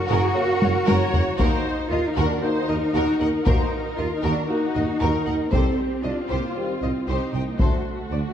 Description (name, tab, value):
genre	cinematic, epic orchestral film score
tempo	116 BPM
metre	4/4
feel	straight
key	unclear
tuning	A4 = 440 Hz
part	rich symphonic viola section	accompaniment	0.0-8.3 s	Eb4 to Db5	-30 LUFS	right 1 dB	none
part	warm studio cello section	bass	0.0-8.3 s	A3 to Gb4	-25 LUFS	equal	none
part	rich symphonic violin section	melody	0.1-8.2 s	Bb4 to G5	-32 LUFS	left 4 dB	none
part	warm symphonic violin section	second line	0.1-8.2 s	Gb4 to Eb5	-32 LUFS	left 1 dB	none
part	mellow tuba	bass	0.1-8.2 s	Gb1 to Eb2	-29 LUFS	right 3 dB	none
part	rich symphonic double bass section	bass	0.1-8.2 s	C2 to Gb2	-28 LUFS	right 2 dB	none
part	mellow French horn section	sustained chords	0.3-7.8 s	Gb4 to Db5	-33 LUFS	left 4 dB	none
part	warm trombone section	sustained chords	0.4-7.8 s	Db3 to Bb3	-35 LUFS	right 2 dB	none
part	solo taiko drums	drums	0.6-8.1 s	none	-23 LUFS	left 1 dB	none
room	moderate scoring stage reverb, RT60 1.6 s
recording	dark, warm production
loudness	-20 LUFS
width	side -9 dB against mid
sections	0.0-8.3 A section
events	drum fill 0.6-1.4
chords	0.0 Gb; 1.4 Ebm; 5.5 Cm; 7.6 D7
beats	0.35 0.87 | 1.39 1.90 2.42 2.94 | 3.46 3.97 4.49 5.01 | 5.52 6.04 6.56 7.08 | 7.59 8.11